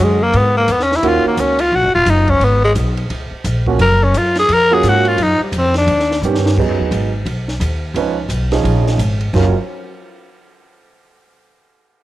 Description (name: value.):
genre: jazz, small-group swing and bop.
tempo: 173 BPM.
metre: 4/4.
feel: swing 62% on 8ths.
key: F# major.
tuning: A4 = 439 Hz.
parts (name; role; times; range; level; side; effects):
growling tenor saxophone; melody; 0.0-6.2 s; G3 to A#4; -14 LUFS; left 1 dB; cassette tape.
warm grand piano; accompaniment; 0.0-1.5, 3.7-9.5 s; D3 to B4; -19 LUFS; right 6 dB; none.
upright bass; bass; 0.0-9.5 s; D#1 to G#2; -17 LUFS; equal; none.
compact cocktail drum kit; drums; 0.3-9.4 s; crash cymbal, hi-hat, kick drum, ride cymbal, snare drum; -26 LUFS; equal; cassette tape.
room: light reverb.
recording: home recording on cassette.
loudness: -12 LUFS.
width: side -15 dB against mid.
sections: 0.0-6.6 A section; 6.6-9.3 B section; 9.3-10.7 C section.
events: drum fill 6.2-6.6.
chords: 0.0 E13; 1.0 D#m7; 2.4 G#m; 3.1 C#6; 3.8 F#maj7; 5.9 D#aug7; 6.6 G#m7; 8.0 C#9; 9.3 F#maj7.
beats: 0.33 0.68 | 1.03 1.37 1.72 2.07 | 2.41 2.76 3.10 3.45 | 3.80 4.14 4.49 4.84 | 5.18 5.53 5.87 6.22 | 6.57 6.91 7.26 7.61 | 7.95 8.30 8.64 8.99 | 9.34.